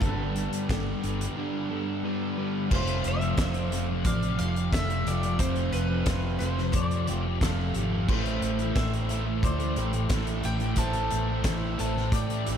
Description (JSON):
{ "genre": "rock, shoegaze and dream pop", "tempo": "89 BPM", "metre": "4/4", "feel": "straight", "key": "unclear", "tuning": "A4 = 441 Hz", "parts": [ { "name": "bowl-back mandolin", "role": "melody", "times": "0.0-12.6 s", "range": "A4 to A5", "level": "-35 LUFS", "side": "equal", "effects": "ping-pong delay" }, { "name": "electric guitar through a small old amp", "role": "arpeggios", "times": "0.0-12.6 s", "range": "C4 to D5", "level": "-38 LUFS", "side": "left 1 dB", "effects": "wide subtle chorus, ping-pong delay" }, { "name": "overdriven semi-hollow guitar", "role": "riff", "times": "0.0-12.6 s", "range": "F2 to G4", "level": "-35 LUFS", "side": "right 9 dB", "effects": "reverse reverb" }, { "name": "overdriven semi-hollow guitar", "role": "riff", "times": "0.0-12.6 s", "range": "F2 to A3", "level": "-35 LUFS", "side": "right 1 dB", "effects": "none" }, { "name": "thick fuzz guitar", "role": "riff", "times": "0.0-12.6 s", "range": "F2 to A3", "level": "-32 LUFS", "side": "left 6 dB", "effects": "distortion, ensemble chorus" }, { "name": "vintage muted fingered electric bass", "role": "bass", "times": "0.0-12.6 s", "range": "F1 to A2", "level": "-30 LUFS", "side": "equal", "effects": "none" }, { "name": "loose indie drum kit", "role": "drums", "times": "0.0-12.6 s", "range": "crash cymbal, hi-hat, kick drum, snare drum", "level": "-30 LUFS", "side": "equal", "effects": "none" } ], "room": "moderate lush hall reverb, RT60 2.4 s", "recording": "dreamy mix soaked in reverb", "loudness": "-25 LUFS", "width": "side -8 dB against mid", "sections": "0.0-2.7 A section; 2.7-12.6 B section", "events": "none", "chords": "0.0 Gadd9; 2.7 F6; 8.1 Am7", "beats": "| 0.02 0.69 1.36 2.04 | 2.71 3.38 4.05 4.73 | 5.40 6.07 6.74 7.42 | 8.09 8.76 9.44 10.11 | 10.78 11.46 12.13" }